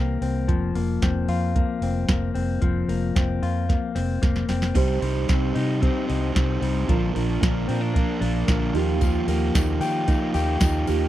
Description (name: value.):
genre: jangly indie pop.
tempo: 113 BPM.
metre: 4/4.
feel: straight.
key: unclear.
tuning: A4 = 438 Hz.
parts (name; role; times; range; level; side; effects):
clean electric guitar; arpeggios; 0.0-11.1 s; E3 to G4; -26 LUFS; left 6 dB; none.
vintage muted fingered electric bass; bass; 0.0-11.1 s; F1 to Eb3; -25 LUFS; right 1 dB; none.
soft vintage rhythm box; drums; 0.2-11.0 s; crash cymbal, hi-hat, kick drum, snare drum; -22 LUFS; right 1 dB; none.
crunchy overdriven guitar; accompaniment; 4.7-11.1 s; Bb2 to C5; -28 LUFS; right 5 dB; none.
mellow reed electric piano; accompaniment; 4.7-11.1 s; D4 to C5; -31 LUFS; right 15 dB; tremolo.
tambourine; percussion; 9.0-11.0 s; none; -42 LUFS; left 18 dB; none.
room: little or no reverb.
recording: dry, close 1970s-style studio recording.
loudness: -20 LUFS.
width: side -13 dB against mid.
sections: 0.0-4.8 A section; 4.8-11.1 B section.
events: drum fill 3.7-4.8.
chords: 0.5 Fsus4; 4.8 Cm; 6.9 Bb; 8.8 Ebadd9.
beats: | 0.49 1.02 1.56 2.09 | 2.62 3.16 3.69 4.22 | 4.76 5.29 5.82 6.36 | 6.89 7.42 7.95 8.48 | 9.02 9.55 10.08 10.61.